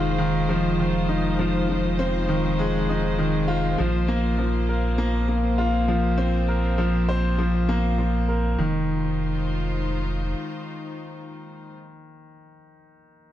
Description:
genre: piano and strings electronica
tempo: 100 BPM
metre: 4/4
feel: straight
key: F minor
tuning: A4 = 440 Hz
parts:
  - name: warm studio string section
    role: sustained chords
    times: 0.0-11.7 s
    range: Ab3 to C5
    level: -31 LUFS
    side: left 1 dB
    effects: none
  - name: bright concert grand piano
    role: riff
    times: 0.0-13.3 s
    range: Eb3 to C5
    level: -24 LUFS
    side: left 1 dB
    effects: tape echo
  - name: round analog bass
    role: bass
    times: 0.0-10.3 s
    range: F1 to Bb1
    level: -25 LUFS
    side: equal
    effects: none
room: light reverb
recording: none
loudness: -21 LUFS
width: side -12 dB against mid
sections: 0.0-8.6 A section; 8.6-11.0 B section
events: filter sweep on analog synth bass 0.0-8.6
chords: 0.0 Fm7; 3.8 Bbsus2; 8.6 Fm7

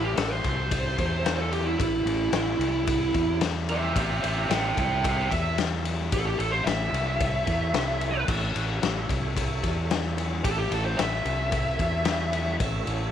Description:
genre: blues rock power trio and southern rock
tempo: 111 BPM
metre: 4/4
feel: straight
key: A mixolydian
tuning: A4 = 440 Hz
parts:
  - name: bluesy overdriven lead guitar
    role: melody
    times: 0.0-12.6 s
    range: E4 to G5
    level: -28 LUFS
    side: right 2 dB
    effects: distortion
  - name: percussive tonewheel organ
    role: sustained chords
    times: 0.0-13.1 s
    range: C#4 to F5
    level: -39 LUFS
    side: right 12 dB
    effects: slow rotary speaker, chorus vibrato
  - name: fuzz fingered electric bass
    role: bass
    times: 0.0-13.1 s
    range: A1 to E2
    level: -29 LUFS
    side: right 1 dB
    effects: overdrive
  - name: raw garage drum kit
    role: drums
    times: 0.2-13.0 s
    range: crash cymbal, kick drum, ride cymbal, snare drum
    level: -28 LUFS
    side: left 5 dB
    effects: none
room: small room reverb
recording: 1960s-style stereo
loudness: -24 LUFS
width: side -9 dB against mid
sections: 0.0-13.1 A section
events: lead electric guitar solo 0.0-13.1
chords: 0.0 A

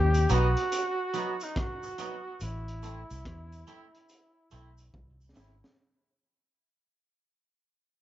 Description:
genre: roots reggae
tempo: 71 BPM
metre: 4/4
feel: swing 64% on 16ths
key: unclear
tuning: A4 = 438 Hz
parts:
  - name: warm flugelhorn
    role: melody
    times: 0.0-5.0 s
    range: D#4 to G4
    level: -32 LUFS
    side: equal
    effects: tape echo
  - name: vintage muted fingered electric bass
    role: bass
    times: 0.0-5.6 s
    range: G#1 to E2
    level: -27 LUFS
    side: equal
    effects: none
  - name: crunchy breakbeat drum kit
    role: drums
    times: 0.1-5.8 s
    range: hi-hat, kick drum, rim click, snare drum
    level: -37 LUFS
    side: equal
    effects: none
  - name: cabasa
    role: percussion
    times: 0.1-5.6 s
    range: none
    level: -47 LUFS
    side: right 2 dB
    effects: none
  - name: twangy electric guitar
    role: accompaniment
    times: 0.3-5.5 s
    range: F#3 to E4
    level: -35 LUFS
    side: right 3 dB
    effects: lush chorus, tape echo
room: moderate club reverb, RT60 0.6 s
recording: nothing above 7.5 kHz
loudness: -27 LUFS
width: side -13 dB against mid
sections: 0.0-5.8 A section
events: fade-out 0.0-5.8; drum fill 4.9-5.8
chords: 0.0 B; 2.4 Am

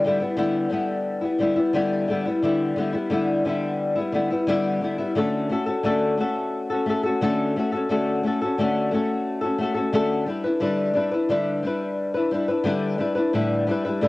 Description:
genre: indie pop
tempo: 88 BPM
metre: 4/4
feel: straight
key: unclear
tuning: A4 = 441 Hz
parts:
  - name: flamenco guitar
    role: solo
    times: 0.0-14.1 s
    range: A2 to B4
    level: -21 LUFS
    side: left 2 dB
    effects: analog chorus, warbly pitch drift, cassette tape
room: moderate booth ambience, RT60 0.2 s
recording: home recording on cassette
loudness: -21 LUFS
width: side -19 dB against mid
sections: 0.0-14.1 A section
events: none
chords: 0.0 Em7/D; 5.2 Dmaj7; 10.3 Em7/D; 13.3 A9sus4

